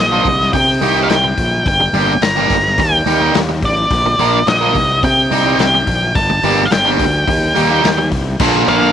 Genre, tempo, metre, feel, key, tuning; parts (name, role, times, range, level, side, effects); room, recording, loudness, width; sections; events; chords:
indie rock; 107 BPM; 4/4; straight; A4 = 444 Hz
octave-fuzz lead guitar; melody; 0.0-8.9 s; D5 to Bb5; -15 LUFS; equal; distortion
fuzz fingered electric bass; bass; 0.0-8.9 s; G1 to C3; -18 LUFS; equal; overdrive
distorted electric guitar; riff; 0.1-8.9 s; Bb2 to Bb4; -16 LUFS; right 2 dB; distortion
raw garage drum kit; drums; 0.3-8.8 s; crash cymbal, hi-hat, kick drum, snare drum; -19 LUFS; left 3 dB
light reverb, small room ambience; 1960s-style stereo; -11 LUFS; side -9 dB against mid
0.0-8.4 A section
0.3 Cm; 1.7 Gm; 2.8 Eb; 3.9 Bb; 4.8 Cm; 6.2 Gm; 7.3 Eb; 8.4 Bb